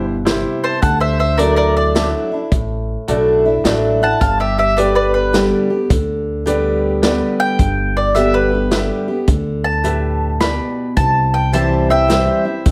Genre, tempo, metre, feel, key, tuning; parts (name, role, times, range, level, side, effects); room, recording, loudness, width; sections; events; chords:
honky-tonk and classic country; 106 BPM; 3/4; swing 65% on 8ths; G major; A4 = 441 Hz
mandolin; melody; 0.0-12.7 s; G4 to B5; -20 LUFS; equal
bright baby grand piano; accompaniment; 0.0-12.5 s; E4 to E5; -27 LUFS; equal
picked steel-string acoustic guitar; accompaniment; 0.0-12.7 s; G2 to G4; -21 LUFS; equal
upright bass; bass; 0.0-12.7 s; G1 to D2; -23 LUFS; equal
vintage drum kit; drums; 0.3-12.7 s; hi-hat, kick drum, snare drum; -20 LUFS; equal
moderate large studio reverb, RT60 0.9 s; -16 LUFS; mono
0.0-12.7 A section
mandolin solo 0.0-12.7
0.0 C; 0.8 Dadd9; 4.2 G; 11.0 C